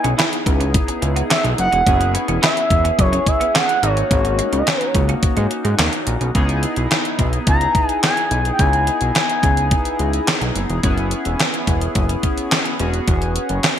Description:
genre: early-eighties boogie funk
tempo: 107 BPM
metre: 4/4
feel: straight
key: C# dorian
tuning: A4 = 439 Hz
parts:
  - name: expressive synth lead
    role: melody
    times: 0.0-10.6 s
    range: B4 to A#5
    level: -20 LUFS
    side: equal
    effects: chorus, ping-pong delay
  - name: chorused polysynth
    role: accompaniment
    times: 0.0-13.8 s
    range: A#3 to G#4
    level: -23 LUFS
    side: left 1 dB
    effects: none
  - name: semi-hollow electric guitar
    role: riff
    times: 0.0-6.3 s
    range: G#3 to E4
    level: -28 LUFS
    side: right 4 dB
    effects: ensemble chorus
  - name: fat analog bass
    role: bass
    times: 0.0-13.6 s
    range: E1 to G#2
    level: -20 LUFS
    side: equal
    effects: none
  - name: detuned 8-bit digital drum machine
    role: drums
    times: 0.0-13.8 s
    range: handclaps, hi-hat, kick drum, snare drum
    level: -19 LUFS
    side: equal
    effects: gated reverb
room: moderate plate reverb, RT60 1.5 s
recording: bright 1980s-style digital production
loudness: -15 LUFS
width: side -9 dB against mid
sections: 0.0-6.3 A section; 6.3-13.8 B section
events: none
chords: 0.0 C#m7; 1.9 F#9sus4; 3.8 G#9sus4; 6.3 C#m7; 10.8 F#9sus4

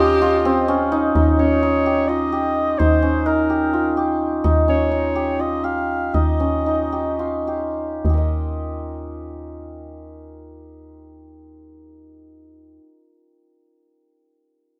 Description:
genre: contemporary instrumental, chamber music in an uneven meter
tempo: 201-257 BPM (eighths)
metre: 7/8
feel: straight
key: Eb mixolydian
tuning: A4 = 441 Hz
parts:
  - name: mellow oboe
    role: melody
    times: 0.0-7.5 s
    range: Bb4 to F5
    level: -26 LUFS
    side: equal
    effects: none
  - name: clear viola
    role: second line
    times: 0.0-0.9 s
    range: G4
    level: -22 LUFS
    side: equal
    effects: none
  - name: hammered dulcimer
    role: arpeggios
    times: 0.0-12.9 s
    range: C4 to Eb5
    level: -23 LUFS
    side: equal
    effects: none
  - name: woody FM bass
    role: bass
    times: 0.0-12.8 s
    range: Eb2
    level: -26 LUFS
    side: equal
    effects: none
room: moderate studio ambience, RT60 0.5 s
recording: none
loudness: -19 LUFS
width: mono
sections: 0.0-1.1 A section; 1.1-8.1 B section; 8.1-12.2 C section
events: slowing down 4.4-8.1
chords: 0.0 Eb7; 1.1 Eb9; 8.1 Eb

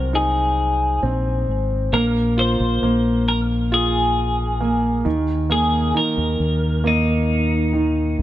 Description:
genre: pop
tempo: 67 BPM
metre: 4/4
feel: straight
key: unclear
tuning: A4 = 441 Hz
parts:
  - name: twelve-string electric guitar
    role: melody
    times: 0.0-8.2 s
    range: Eb4 to C5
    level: -22 LUFS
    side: left 2 dB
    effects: none
  - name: clear concert grand piano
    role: accompaniment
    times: 0.0-8.2 s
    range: C3 to F4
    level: -21 LUFS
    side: right 1 dB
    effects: none
  - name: fingered electric bass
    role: bass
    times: 0.0-8.2 s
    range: Ab1 to Eb2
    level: -22 LUFS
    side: equal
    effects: none
room: light reverb, studio reverb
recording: none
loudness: -17 LUFS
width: side -13 dB against mid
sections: 0.0-8.2 A section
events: none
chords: 0.0 Ab7/C; 1.9 Bb5; 5.1 Eb5

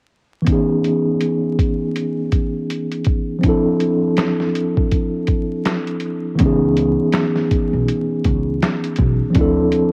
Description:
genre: lo-fi hip hop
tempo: 81 BPM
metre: 4/4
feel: swing 58% on 16ths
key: unclear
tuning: A4 = 438 Hz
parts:
  - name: mellow tine electric piano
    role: accompaniment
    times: 0.4-9.9 s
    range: E3 to A4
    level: -20 LUFS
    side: equal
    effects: cassette tape, low-pass filter
  - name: lo-fi sampler-style drum kit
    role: drums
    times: 0.5-9.9 s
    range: finger snaps, hi-hat, kick drum, snare drum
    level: -22 LUFS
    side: equal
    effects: overdrive, cassette tape
  - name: upright bass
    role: bass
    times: 6.4-9.9 s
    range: B1 to D2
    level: -23 LUFS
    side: equal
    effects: none
room: light reverb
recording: home recording on cassette, vinyl crackle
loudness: -18 LUFS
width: mono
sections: 0.5-6.4 A section; 6.4-9.9 B section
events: none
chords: 0.5 C#m9; 3.4 Dm9; 6.4 C#m9; 9.4 Dm9

